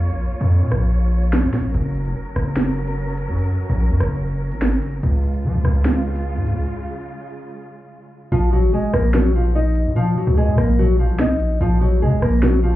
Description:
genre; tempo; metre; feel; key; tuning
hip hop, drill; 146 BPM; 4/4; half-time; Bb minor; A4 = 441 Hz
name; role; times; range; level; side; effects
dark symphonic string section; sustained chords; 0.0-8.3 s; Db3 to Db5; -30 LUFS; right 1 dB; none
distorted 808-style bass; bass; 0.0-12.8 s; F1 to F3; -18 LUFS; equal; distortion
drill drum kit; drums; 0.1-12.5 s; finger snaps, hi-hat, rim click, snare drum; -23 LUFS; right 1 dB; none
nylon-string guitar; melody; 8.3-12.8 s; F3 to Eb5; -19 LUFS; left 1 dB; ping-pong delay
room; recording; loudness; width
little or no reverb; heard muffled through a wall, club reverb, EQ; -16 LUFS; side -15 dB against mid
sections
0.0-8.3 A section; 8.3-12.8 B section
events
break 6.7-8.3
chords
0.0 Bbm; 1.7 Gb; 5.0 Db; 8.3 Bb5

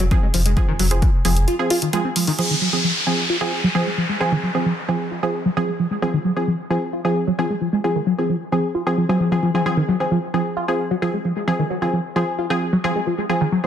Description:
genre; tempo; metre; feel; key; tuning
driving peak-time techno; 132 BPM; 4/4; straight; F phrygian; A4 = 439 Hz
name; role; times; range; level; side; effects
tight sequenced synth; riff; 0.0-13.6 s; Eb3 to F4; -21 LUFS; equal; chorus, sidechain pumping, dub echo
saturated sub bass; bass; 0.0-1.5 s; F1; -19 LUFS; equal; tube saturation, sidechain pumping, low-pass filter
punchy analog drum machine; drums; 0.0-2.5 s; crash cymbal, hi-hat; -26 LUFS; right 1 dB; none
filtered dub chord stab; stabs; 0.1-13.7 s; F3 to Ab4; -22 LUFS; right 1 dB; chorus, sidechain pumping, dub echo
electronic kick drum; drums; 0.1-1.1 s; none; -18 LUFS; equal; none
downlifter; sound effects; 2.4-6.0 s; none; -25 LUFS; left 1 dB; none
room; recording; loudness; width
moderate plate reverb, RT60 1.2 s, digital ambience; dense, heavily limited modern master; -18 LUFS; side -9 dB against mid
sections
0.0-2.4 A section; 2.4-13.7 B section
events
filter sweep on synth arpeggio sound 0.0-2.4, 2.4-13.7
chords
0.0 Fm

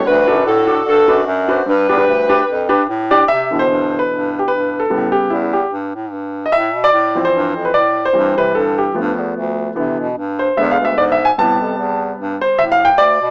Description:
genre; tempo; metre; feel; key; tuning
gospel; 148 BPM; 4/4; swing 57% on 8ths; C major; A4 = 442 Hz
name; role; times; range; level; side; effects
dark saxophone section; melody; 0.0-2.9 s; D4 to C5; -14 LUFS; equal; none
warm baby grand piano; accompaniment; 0.1-13.3 s; G2 to A5; -14 LUFS; equal; plate reverb
clear bass clarinet; bass; 0.1-13.3 s; D2 to C3; -20 LUFS; equal; none
room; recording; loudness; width
wet small room reverb, RT60 0.5 s; rough home demo mix, small speaker sound; -12 LUFS; side -30 dB against mid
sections
0.0-3.3 A section; 3.3-13.3 B section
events
grand piano solo 3.3-13.3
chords
0.1 D; 1.7 G; 3.3 Cmaj7; 4.9 A7; 6.5 Dm7/A; 8.1 C/G; 9.0 G7; 9.8 Cmaj7; 10.6 E7; 11.4 Am7

